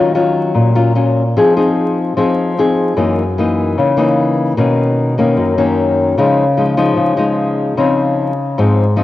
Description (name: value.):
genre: bossa nova.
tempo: 150 BPM.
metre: 4/4.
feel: straight.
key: Db major.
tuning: A4 = 441 Hz.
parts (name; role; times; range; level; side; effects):
nylon-string guitar; solo; 0.0-9.0 s; Gb2 to Ab4; -12 LUFS; left 2 dB; cassette tape.
room: moderate lush hall reverb, RT60 2.7 s.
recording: home recording on cassette, vinyl crackle.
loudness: -12 LUFS.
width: side -15 dB against mid.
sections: 0.0-9.0 A section.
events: none.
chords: 0.0 Ebm9; 1.4 Fm7; 3.0 Gb6; 4.6 Cbmaj9; 6.2 Dbadd9; 7.8 Dbmaj9.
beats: 0.15 0.55 0.95 | 1.36 1.76 2.16 2.56 | 2.96 3.36 3.76 4.16 | 4.57 4.97 5.37 5.77 | 6.17 6.57 6.97 7.37 | 7.77 8.17 8.57 8.97.